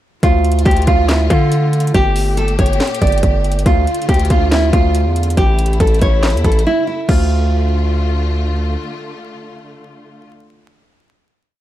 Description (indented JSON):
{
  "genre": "hip hop, trap",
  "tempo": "140 BPM",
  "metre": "4/4",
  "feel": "half-time",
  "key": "D harmonic minor",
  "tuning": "A4 = 440 Hz",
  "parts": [
    { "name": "nylon-string guitar", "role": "melody", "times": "0.2-8.3 s", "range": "E4 to D5", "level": "-18 LUFS", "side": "right 1 dB", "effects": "none" },
    { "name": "warm symphonic string section", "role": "sustained chords", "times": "0.2-10.3 s", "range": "Bb2 to G4", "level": "-26 LUFS", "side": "left 2 dB", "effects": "none" },
    { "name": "distorted 808-style bass", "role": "bass", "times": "0.2-8.8 s", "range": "G1 to D3", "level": "-15 LUFS", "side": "equal", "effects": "distortion" },
    { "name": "trap drum kit", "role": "drums", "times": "0.2-7.2 s", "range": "crash cymbal, handclaps, hi-hat, kick drum, snare drum", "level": "-16 LUFS", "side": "equal", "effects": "none" }
  ],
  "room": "little or no reverb",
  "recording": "dry, gritty hardware recording, vinyl crackle",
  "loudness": "-12 LUFS",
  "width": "side -13 dB against mid",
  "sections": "0.2-7.1 hook; 7.1-10.5 final chord",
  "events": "break 6.7-7.1",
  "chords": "0.2 Dm; 1.9 Gmadd9; 3.7 Dm; 5.4 A; 7.1 Dm"
}